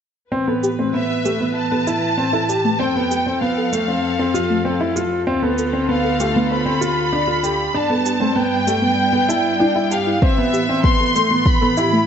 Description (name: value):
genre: piano and strings electronica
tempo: 97 BPM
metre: 4/4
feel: straight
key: A minor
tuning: A4 = 444 Hz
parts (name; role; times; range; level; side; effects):
- rich symphonic string section; sustained chords; 0.3-12.1 s; D2 to B4; -25 LUFS; equal; sidechain pumping
- warm grand piano; riff; 0.3-12.0 s; A3 to G4; -20 LUFS; right 1 dB; none
- soft round pluck; arpeggios; 0.5-12.0 s; A3 to A5; -25 LUFS; left 2 dB; ensemble chorus, sidechain pumping, tape echo
- shaker; drums; 0.6-11.9 s; none; -31 LUFS; right 7 dB; none
- warm studio violin section; melody; 0.9-12.1 s; E5 to C6; -21 LUFS; left 1 dB; none
- electronic kick drum; drums; 10.2-11.6 s; none; -16 LUFS; equal; overdrive
room: wet echo chamber reverb, RT60 1.4 s, small room ambience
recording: nothing above 8.0 kHz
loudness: -16 LUFS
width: side -8 dB against mid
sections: 0.3-12.1 A section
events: build-up 0.3-12.1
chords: 0.3 Amadd9; 2.8 F; 5.3 Dm; 7.7 G; 10.2 Amadd9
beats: | 0.33 0.94 1.56 2.18 | 2.80 3.42 4.04 4.66 | 5.28 5.89 6.51 7.13 | 7.75 8.37 8.99 9.61 | 10.22 10.84 11.46